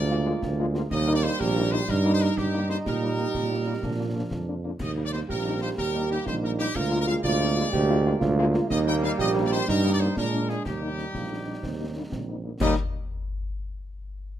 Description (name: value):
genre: military-style march for wind band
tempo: 123 BPM (dotted quarters)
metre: 6/8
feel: straight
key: Eb major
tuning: A4 = 436 Hz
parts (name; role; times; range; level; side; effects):
- bright trumpet section; melody; 0.0-12.7 s; G4 to G5; -32 LUFS; left 2 dB; none
- dark euphonium; second line; 0.0-12.5 s; Bb3 to G4; -30 LUFS; right 5 dB; none
- clear trombone section; sustained chords; 0.0-12.7 s; F3 to Eb4; -33 LUFS; right 2 dB; none
- mellow tuba; bass; 0.0-12.7 s; Bb1 to Bb2; -26 LUFS; right 2 dB; none
- mellow French horn section; accompaniment; 0.1-12.7 s; F3 to F4; -32 LUFS; left 4 dB; none
- concert snare drum, concert bass drum and clash cymbals; drums; 0.4-12.8 s; none; -36 LUFS; left 2 dB; none
room: light reverb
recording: close, detailed microphones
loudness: -23 LUFS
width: side -11 dB against mid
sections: 0.0-12.6 A section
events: none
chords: 0.0 Bb7/D; 0.9 Eb; 1.9 Eb/G; 2.9 Eb/Bb; 3.8 Bb; 4.8 Eb; 6.8 Bb7/D; 8.7 Eb; 9.7 Eb/G; 10.2 Bb7; 10.7 Eb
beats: 0.42 | 0.91 1.40 | 1.89 2.37 | 2.86 3.35 | 3.83 4.32 | 4.81 5.29 | 5.78 6.27 | 6.76 7.25 | 7.73 8.22 | 8.71 9.20 | 9.68 10.17 | 10.66 11.15 | 11.63 12.12 | 12.61